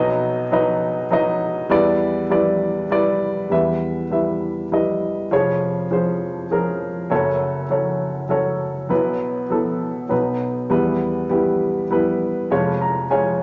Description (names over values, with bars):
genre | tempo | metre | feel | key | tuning
folk | 100 BPM | 3/4 | straight | E minor | A4 = 440 Hz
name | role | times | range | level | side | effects
warm upright piano | solo | 0.0-13.4 s | E#1 to A#5 | -20 LUFS | equal | none
room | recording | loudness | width
wet large studio reverb, RT60 1.1 s | nothing above 7.5 kHz | -20 LUFS | mono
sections
0.0-3.5 A section; 3.5-10.7 B section; 10.7-13.4 C section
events
none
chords
0.0 B; 1.7 Em7; 3.5 Em; 5.3 C#/E#; 7.1 F#m; 8.9 Bsus4; 10.1 B; 10.7 Em; 12.5 C#/E#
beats
0.51 1.11 | 1.71 2.31 2.91 | 3.51 4.11 4.71 | 5.31 5.91 6.51 | 7.11 7.71 8.31 | 8.91 9.51 10.11 | 10.71 11.31 11.91 | 12.51 13.11